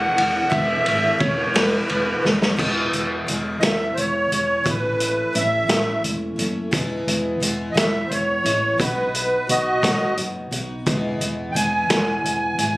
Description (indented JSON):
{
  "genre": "folk rock and heartland rock",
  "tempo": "58 BPM (dotted quarters)",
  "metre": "6/8",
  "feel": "straight",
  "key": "E major",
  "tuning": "A4 = 445 Hz",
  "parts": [
    { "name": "musette accordion", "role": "melody", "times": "0.0-12.8 s", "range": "F#4 to G#5", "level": "-21 LUFS", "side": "right 1 dB", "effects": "none" },
    { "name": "picked twelve-string acoustic guitar", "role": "accompaniment", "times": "0.0-12.8 s", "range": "E2 to F#4", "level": "-28 LUFS", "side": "left 1 dB", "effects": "none" },
    { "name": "hollow-body short-scale fingered electric bass", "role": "bass", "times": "0.0-12.8 s", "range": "E1 to B1", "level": "-28 LUFS", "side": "equal", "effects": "none" },
    { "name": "vintage drum kit", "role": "drums", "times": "0.2-12.7 s", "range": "crash cymbal, hi-hat, kick drum, ride cymbal, snare drum", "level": "-22 LUFS", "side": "equal", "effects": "none" }
  ],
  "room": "light reverb, small room ambience",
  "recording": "recorded on a phone in the room, club reverb, compression",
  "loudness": "-18 LUFS",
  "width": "side -19 dB against mid",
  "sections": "0.0-2.6 A section; 2.6-12.8 B section",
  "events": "drum fill 2.2-2.6; accordion solo 2.6-12.8",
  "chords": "0.0 E; 4.7 A; 6.7 E; 8.8 B; 10.9 E",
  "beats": "| 0.52 1.55 | 2.59 3.62 | 4.66 5.70 | 6.73 7.77 | 8.80 9.84 | 10.87 11.90"
}